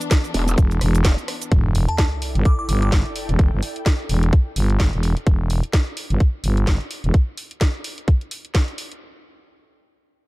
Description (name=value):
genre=bass house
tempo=128 BPM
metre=4/4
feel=swing 58% on 16ths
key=E minor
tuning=A4 = 440 Hz
part: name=rich studio string section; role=sustained chords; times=0.0-1.5 s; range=E3 to D4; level=-32 LUFS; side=left 3 dB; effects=sidechain pumping
part: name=house drum kit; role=drums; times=0.0-9.0 s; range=hi-hat, rim click, shaker, snare drum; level=-28 LUFS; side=equal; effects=none
part: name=electronic kick drum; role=drums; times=0.1-8.7 s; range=none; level=-16 LUFS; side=equal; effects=none
part: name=growl bass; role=bass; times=0.3-1.2 s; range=E1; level=-20 LUFS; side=equal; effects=distortion, chorus, overdrive, sidechain pumping
part: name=growling FM bass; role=bass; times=0.6-7.1 s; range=E1 to G1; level=-18 LUFS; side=equal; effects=tube saturation, sidechain pumping
part: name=sub drop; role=sound effects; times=1.5-3.4 s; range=none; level=-27 LUFS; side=equal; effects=none
part: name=ethereal airy pad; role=texture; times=1.8-5.3 s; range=E4 to G5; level=-35 LUFS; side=left 1 dB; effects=ensemble chorus, built-in reverb, sidechain pumping
part: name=glassy synth bell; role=melody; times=1.9-2.9 s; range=A5 to D6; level=-29 LUFS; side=equal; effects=chorus, ping-pong delay
room=digital ambience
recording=dark, warm production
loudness=-17 LUFS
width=side -21 dB against mid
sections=0.0-1.5 A section; 1.5-9.0 B section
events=drop 0.0-1.5; fade-out on ambient pad 1.5-5.3; impact 1.5-3.4; filter sweep on FM bass 1.5-7.1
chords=0.0 E5; 1.5 Em